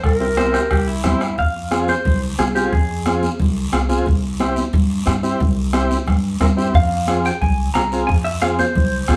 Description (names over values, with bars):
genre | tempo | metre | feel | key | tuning
latin, cumbia | 179 BPM | 4/4 | straight | F harmonic minor | A4 = 439 Hz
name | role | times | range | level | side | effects
mellow clarinet | melody | 0.0-1.0 s | Bb4 | -22 LUFS | equal | none
upright bass | bass | 0.0-9.2 s | C2 to G2 | -24 LUFS | equal | none
bombo | percussion | 0.0-9.2 s | none | -23 LUFS | equal | none
guiro | percussion | 0.0-9.2 s | none | -36 LUFS | equal | none
combo organ | accompaniment | 0.2-9.1 s | C4 to Bb4 | -24 LUFS | equal | none
semi-hollow electric guitar | second line | 0.4-3.2, 6.8-9.2 s | E4 to Bb5 | -24 LUFS | equal | none
congas | percussion | 0.4-9.2 s | none | -29 LUFS | equal | none
room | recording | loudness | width
wet studio reverb, RT60 0.6 s | band playing live in one room | -18 LUFS | mono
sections
0.0-1.4 A section; 1.4-9.2 B section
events
clean electric guitar solo 1.4-9.2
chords
0.0 C7; 1.4 Fm; 4.1 C; 6.7 Fm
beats
| 0.04 0.38 0.71 1.05 | 1.38 1.72 2.05 2.39 | 2.72 3.06 3.40 3.73 | 4.07 4.40 4.74 5.07 | 5.41 5.74 6.08 6.41 | 6.75 7.08 7.42 7.75 | 8.08 8.42 8.75 9.09